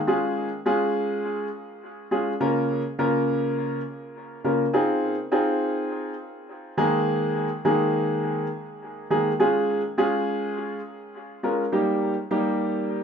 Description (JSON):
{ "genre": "pop", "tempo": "103 BPM", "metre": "4/4", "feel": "straight", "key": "unclear", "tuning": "A4 = 440 Hz", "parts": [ { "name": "warm baby grand piano", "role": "solo", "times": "0.0-13.0 s", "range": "Db3 to Bb4", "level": "-23 LUFS", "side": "equal", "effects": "dub echo" } ], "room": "wet studio reverb, RT60 0.6 s", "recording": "rough home demo mix", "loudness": "-22 LUFS", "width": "side -7 dB against mid", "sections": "0.0-13.0 A section", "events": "none", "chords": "0.1 Db; 2.4 Bbm/Db; 4.7 Fm7; 6.8 Absus2/Eb; 9.4 Db; 11.7 Eb", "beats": "| 0.08 0.66 1.24 1.82 | 2.41 2.99 3.57 4.16 | 4.74 5.32 5.90 6.49 | 7.07 7.65 8.23 8.81 | 9.40 9.98 10.56 11.14 | 11.73 12.31 12.89" }